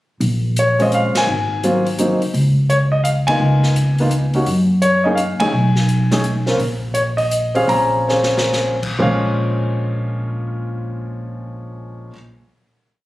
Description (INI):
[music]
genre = jazz piano trio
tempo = 119-170 BPM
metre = 3/4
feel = swing 65% on 8ths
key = Bb minor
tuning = A4 = 440 Hz
[part]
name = upright bass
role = bass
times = 0.2-12.1 s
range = Ab1 to Gb2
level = -19 LUFS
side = equal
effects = none
[part]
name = swinging big-band drum kit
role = drums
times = 0.2-8.9 s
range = crash cymbal, hi-hat, kick drum, ride cymbal, snare drum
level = -27 LUFS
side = left 1 dB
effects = none
[part]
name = warm grand piano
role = melody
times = 0.6-12.1 s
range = Bb2 to Bb5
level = -18 LUFS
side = equal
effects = none
[sound]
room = light reverb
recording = recorded on a phone in the room, club reverb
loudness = -15 LUFS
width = side -17 dB against mid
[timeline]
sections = 0.2-9.0 A section; 9.0-12.0 final chord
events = band accent 1.1, 3.2, 5.4; slowing down 6.6-9.0; drum fill 8.1-8.5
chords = 0.2 Bbm7; 1.3 Ab9; 2.3 Dbsus2; 4.5 Gbsus2; 5.5 Bsus2; 6.6 Bbm7